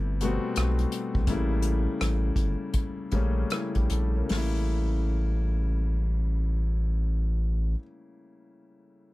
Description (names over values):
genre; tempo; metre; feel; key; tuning
R&B, neo-soul; 75-86 BPM; 4/4; swing 63% on 16ths; unclear; A4 = 440 Hz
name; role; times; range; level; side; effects
clear grand piano; accompaniment; 0.0-9.1 s; B2 to C#5; -32 LUFS; left 3 dB; none
round analog bass; bass; 0.0-7.8 s; G1 to B1; -26 LUFS; equal; none
unplugged drum kit; drums; 0.2-4.5 s; hi-hat, kick drum, rim click, snare drum; -29 LUFS; equal; none
room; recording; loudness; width
little or no reverb; none; -25 LUFS; side -19 dB against mid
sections
0.0-4.3 A section; 4.3-7.5 B section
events
slowing down 0.0-4.3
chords
0.0 Am9; 1.3 A7b9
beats
0.56 | 1.27 1.99 2.74 3.50 | 4.29 5.09 5.89 6.70